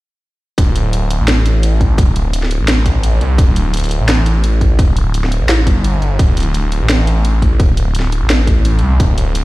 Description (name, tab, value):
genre	half-time drum and bass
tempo	171 BPM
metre	4/4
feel	swing 57% on 16ths, half-time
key	unclear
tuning	A4 = 438 Hz
part	phased detuned saw bass	bass	0.6-9.4 s	D1 to C2	-13 LUFS	equal	phaser
part	drum and bass drum kit	drums	0.6-9.4 s	hi-hat, snare drum	-20 LUFS	equal	studio ambience
part	electronic kick drum	drums	0.6-9.1 s	none	-12 LUFS	equal	overdrive, studio ambience
room	little or no reverb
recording	played on a big sound system in a bare room, stone room reverb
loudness	-11 LUFS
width	side -19 dB against mid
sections	0.6-9.4 A section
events	none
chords	none